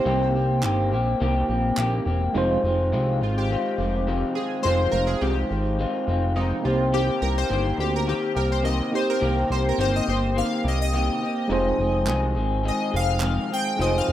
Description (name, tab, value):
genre	indie pop, bedroom pop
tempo	105 BPM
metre	4/4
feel	swing 55% on 16ths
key	unclear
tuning	A4 = 441 Hz
part	chorused retro synth keys	melody	0.0-14.1 s	Eb4 to G5	-28 LUFS	left 2 dB	analog chorus, plate reverb
part	electric guitar through a small old amp	accompaniment	0.0-14.1 s	F2 to Ab4	-26 LUFS	left 2 dB	lush chorus, vibrato effect, plate reverb
part	tine electric piano	accompaniment	0.0-14.1 s	Ab3 to C5	-28 LUFS	right 2 dB	fast stereo tremolo, plate reverb
part	fat analog bass	bass	0.1-14.1 s	E1 to D2	-24 LUFS	equal	none
part	group handclap	percussion	0.6-1.9, 12.1-13.4 s	none	-31 LUFS	right 4 dB	none
room	wet small room reverb, RT60 0.6 s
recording	rough home demo mix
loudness	-21 LUFS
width	side -12 dB against mid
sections	0.0-2.4 A section; 2.4-14.1 B section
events	synth keys solo 2.4-14.1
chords	0.0 Cm7; 2.4 Fm7; 6.6 Cm7; 11.5 Fm7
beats	| 0.07 0.64 1.21 1.78 | 2.35 2.93 3.50 4.07 | 4.64 5.22 5.79 6.36 | 6.93 7.50 8.08 8.65 | 9.22 9.79 10.36 10.94 | 11.51 12.08 12.65 13.22 | 13.79